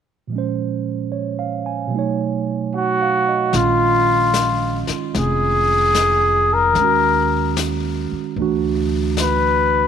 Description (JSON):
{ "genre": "jazz ballad", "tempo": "74 BPM", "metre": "4/4", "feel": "swing 68% on 8ths", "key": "Bb minor", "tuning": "A4 = 440 Hz", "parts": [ { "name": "barky tine electric piano", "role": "accompaniment", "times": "0.3-9.9 s", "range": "Bb2 to Ab5", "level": "-22 LUFS", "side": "right 9 dB", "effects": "none" }, { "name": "growling trumpet", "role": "melody", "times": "2.8-9.9 s", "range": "F4 to Cb5", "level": "-16 LUFS", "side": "left 2 dB", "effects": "none" }, { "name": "upright bass", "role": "bass", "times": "3.5-9.9 s", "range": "F1 to Eb2", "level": "-23 LUFS", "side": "left 2 dB", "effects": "none" }, { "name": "jazz brush drum kit", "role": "drums", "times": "3.5-9.9 s", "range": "brushed snare drum, hi-hat, snare drum", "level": "-28 LUFS", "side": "left 8 dB", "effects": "none" } ], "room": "light reverb, small room ambience", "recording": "1960s-style stereo with parts hard left and right", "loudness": "-16 LUFS", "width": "side -8 dB against mid", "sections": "0.3-3.5 A section; 3.5-9.9 B section", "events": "none", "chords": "0.3 Bbm7; 1.9 B9; 3.5 Bbm7; 6.8 Ebm7; 8.4 D" }